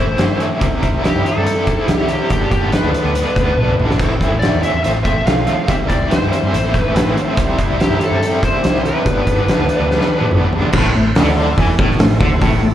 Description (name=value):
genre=blues rock power trio and southern rock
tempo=142 BPM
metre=4/4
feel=straight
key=A minor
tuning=A4 = 440 Hz
part: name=smooth overdriven lead guitar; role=melody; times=0.0-10.3 s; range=G4 to F5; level=-21 LUFS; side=equal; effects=slapback echo
part: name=overdriven electric guitar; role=riff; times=0.0-12.7 s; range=G2 to F4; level=-19 LUFS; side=equal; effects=tremolo, slapback echo
part: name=vintage muted fingered electric bass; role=bass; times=0.0-12.7 s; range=G1 to G2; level=-20 LUFS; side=equal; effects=none
part: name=oversized low-tuned drum kit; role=drums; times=0.2-12.5 s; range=crash cymbal, hi-hat, kick drum, snare drum, splash cymbal, toms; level=-17 LUFS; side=equal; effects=none
part: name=overdriven tonewheel organ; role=sustained chords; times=4.0-12.7 s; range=B3 to B5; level=-27 LUFS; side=right 3 dB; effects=none
room=little or no reverb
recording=live gig heard through the venue's PA, club reverb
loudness=-13 LUFS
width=side -11 dB against mid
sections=0.0-10.7 A section; 10.7-12.7 B section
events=drum fill 3.6-4.0, 9.9-10.7; tonewheel organ fill 6.5-7.4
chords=0.0 Am; 0.6 C; 2.3 G; 4.0 Am; 4.8 F/A; 5.7 C; 6.5 Am; 7.4 C; 9.1 G; 10.7 Am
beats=0.19 | 0.61 1.03 1.46 1.88 | 2.31 2.73 3.15 3.57 | 4.00 4.42 4.84 5.26 | 5.68 6.11 6.53 6.95 | 7.37 7.79 8.22 8.64 | 9.06 9.48 9.90 10.32 | 10.74 11.16 11.58 12.00 | 12.42